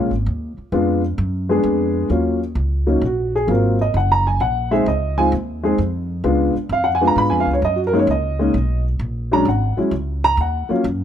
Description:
jazz piano trio; 131 BPM; 3/4; swing 68% on 8ths; Eb minor; A4 = 440 Hz
dark upright piano; melody; 0.0-10.8 s; Gb3 to Cb6; -17 LUFS; equal; plate reverb
upright bass; bass; 0.0-11.0 s; Gb1 to Ab2; -21 LUFS; equal
light reverb; -16 LUFS; side -9 dB against mid
0.0-2.1 A section; 2.1-11.0 B section
upright piano solo 2.1-11.0
0.0 Bb7(no3); 0.7 Fdim7; 2.1 Ebm7; 3.5 Ab13; 4.9 Dbadd9; 6.2 Db7b9; 7.6 Gb6; 9.0 Bbm7b13; 10.4 Ebm

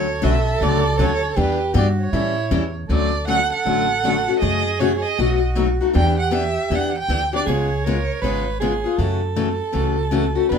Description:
acoustic string swing (jazz manouche); 157 BPM; 4/4; swing 61% on 8ths; D major; A4 = 440 Hz
warm violin; melody; 0.0-8.8 s; B4 to G5; -23 LUFS; right 4 dB
growling soprano saxophone; second line; 0.0-10.6 s; E4 to B4; -25 LUFS; right 5 dB
picked steel-string acoustic guitar; accompaniment; 0.0-10.6 s; B2 to A4; -22 LUFS; left 6 dB
upright bass; bass; 0.0-10.6 s; G#1 to A2; -22 LUFS; equal
moderate studio reverb, RT60 0.5 s; minimal, uncompressed stereo recording; -17 LUFS; side -7 dB against mid
0.0-2.9 A section; 2.9-10.6 B section
0.0 Dmaj7; 1.4 Em7; 2.1 A7; 2.9 Dmaj7; 4.4 F#m7; 5.2 B7; 5.9 Em7; 7.5 C#7; 9.0 F#m7

